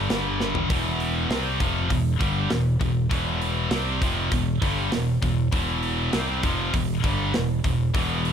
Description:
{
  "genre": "heavy metal",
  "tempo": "99 BPM",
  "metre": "4/4",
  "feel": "straight",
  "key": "E phrygian",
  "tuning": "A4 = 437 Hz",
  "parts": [
    { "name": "scooped high-gain guitar", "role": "riff", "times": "0.0-8.3 s", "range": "E2 to C4", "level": "-27 LUFS", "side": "left 9 dB", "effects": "distortion" },
    { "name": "scooped high-gain guitar", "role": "riff", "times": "0.0-8.3 s", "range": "E2 to C4", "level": "-27 LUFS", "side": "right 10 dB", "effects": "distortion" },
    { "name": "modern bright picked electric bass", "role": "bass", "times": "0.0-8.3 s", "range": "E1 to C2", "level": "-29 LUFS", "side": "equal", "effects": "none" },
    { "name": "tight metal drum kit", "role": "drums", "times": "0.1-8.3 s", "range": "hi-hat, kick drum, snare drum, toms", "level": "-28 LUFS", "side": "equal", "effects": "none" }
  ],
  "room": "studio reverb",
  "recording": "none",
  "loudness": "-22 LUFS",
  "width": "side -8 dB against mid",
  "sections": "0.0-8.3 A section",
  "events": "drum fill 0.4-0.7",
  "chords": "0.1 G5; 0.7 Em"
}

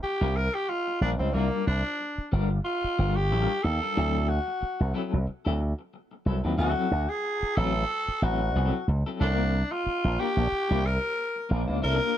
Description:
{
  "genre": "funk",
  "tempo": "92 BPM",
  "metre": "4/4",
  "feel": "swing 56% on 16ths",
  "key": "unclear",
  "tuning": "A4 = 441 Hz",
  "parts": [
    { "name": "raspy tenor saxophone", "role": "melody", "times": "0.0-12.2 s", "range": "Bb3 to Bb4", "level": "-28 LUFS", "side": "equal", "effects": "none" },
    { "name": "clean electric guitar", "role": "accompaniment", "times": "0.0-12.1 s", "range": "F#3 to C5", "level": "-32 LUFS", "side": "left 5 dB", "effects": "tremolo" },
    { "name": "slap bass with an envelope filter", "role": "bass", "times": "0.0-12.0 s", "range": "G1 to Eb2", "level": "-25 LUFS", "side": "right 1 dB", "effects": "none" }
  ],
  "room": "little or no reverb",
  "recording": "dry, close 1970s-style studio recording",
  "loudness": "-24 LUFS",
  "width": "side -11 dB against mid",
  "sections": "0.0-12.2 A section",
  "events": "tenor saxophone solo 0.0-12.2",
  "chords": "0.0 C9sus4; 4.0 D9; 9.2 C9sus4"
}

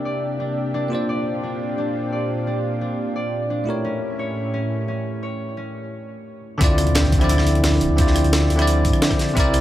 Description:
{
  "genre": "liquid drum and bass",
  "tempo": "174 BPM",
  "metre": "4/4",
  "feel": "straight",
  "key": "D minor",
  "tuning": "A4 = 440 Hz",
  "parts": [
    { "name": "bell-like tine electric piano", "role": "accompaniment", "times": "0.0-9.6 s", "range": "C3 to D5", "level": "-24 LUFS", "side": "equal", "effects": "wide subtle chorus, tape echo" },
    { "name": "lush unison pad", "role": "sustained chords", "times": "0.0-5.9 s", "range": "A2 to E5", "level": "-27 LUFS", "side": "equal", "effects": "chorus, vintage 12-bit sampler grit, sidechain pumping" },
    { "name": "concert harp", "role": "arpeggios", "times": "0.0-9.6 s", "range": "C#4 to D5", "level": "-28 LUFS", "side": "equal", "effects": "low-pass filter, tape echo" },
    { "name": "sub bass with octave", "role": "bass", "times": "6.6-9.6 s", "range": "D1 to G2", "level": "-20 LUFS", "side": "equal", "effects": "none" },
    { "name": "breakbeat sampler-style drum kit", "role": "drums", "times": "6.6-9.6 s", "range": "hi-hat, rim click, snare drum", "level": "-25 LUFS", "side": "right 1 dB", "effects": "low-pass filter on hats, low-pass filter on snare, low-pass filter on room" },
    { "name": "crunchy breakbeat drum kit", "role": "drums", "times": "6.6-9.6 s", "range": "hi-hat, snare drum", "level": "-29 LUFS", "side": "equal", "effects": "high-pass filter on hats, high-pass filter on snare, high-pass filter on room" },
    { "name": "electronic kick drum", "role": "drums", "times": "6.6-9.4 s", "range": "none", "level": "-19 LUFS", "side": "equal", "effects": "none" },
    { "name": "impact", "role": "sound effects", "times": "6.8-8.0 s", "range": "none", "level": "-29 LUFS", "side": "equal", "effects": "none" }
  ],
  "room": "small room ambience",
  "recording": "none",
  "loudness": "-18 LUFS",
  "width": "side -13 dB against mid",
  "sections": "0.0-6.6 A section; 6.6-9.6 B section",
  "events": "break 5.9-6.6; drop 6.6-9.6; impact 6.6-8.0",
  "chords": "0.0 C9; 0.9 Bb69; 3.7 A7b9; 6.6 Dm9"
}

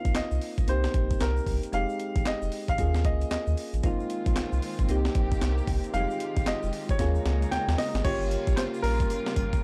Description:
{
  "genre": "R&B, new jack swing",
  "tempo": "114 BPM",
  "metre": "4/4",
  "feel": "swing 63% on 16ths",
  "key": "F minor",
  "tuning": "A4 = 440 Hz",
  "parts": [
    { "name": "clear concert grand piano", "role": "melody", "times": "0.0-9.6 s", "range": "Bb4 to G5", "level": "-34 LUFS", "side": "equal", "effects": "none" },
    { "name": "soft electric-piano-like synth keys", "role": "accompaniment", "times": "0.0-9.6 s", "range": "G3 to Ab4", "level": "-36 LUFS", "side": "equal", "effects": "chorus" },
    { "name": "round analog bass", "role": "bass", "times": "0.1-9.6 s", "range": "F1 to Eb2", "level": "-30 LUFS", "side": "equal", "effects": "none" },
    { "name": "breakbeat sampler-style drum kit", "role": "drums", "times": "0.1-9.6 s", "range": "crash cymbal, handclaps, hi-hat, kick drum, snare drum, tambourine", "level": "-32 LUFS", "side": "equal", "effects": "none" },
    { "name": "tube shaker", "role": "percussion", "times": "0.1-9.6 s", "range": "none", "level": "-57 LUFS", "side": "equal", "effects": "none" },
    { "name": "warm studio string section", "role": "sustained chords", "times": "3.8-9.6 s", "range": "Db3 to G4", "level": "-39 LUFS", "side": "equal", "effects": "none" }
  ],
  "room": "little or no reverb",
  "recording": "dark, warm production",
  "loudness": "-27 LUFS",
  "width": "mono",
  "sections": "0.0-8.0 A section; 8.0-9.6 B section",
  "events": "drum fill 7.0-8.0",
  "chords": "0.0 Ab6 (rootless); 0.7 Cm7; 1.7 Fm9; 2.8 Eb7sus4; 3.8 Ab6; 4.9 Cm7; 5.9 Fm9; 7.0 Eb7sus4; 8.0 Gm7b5"
}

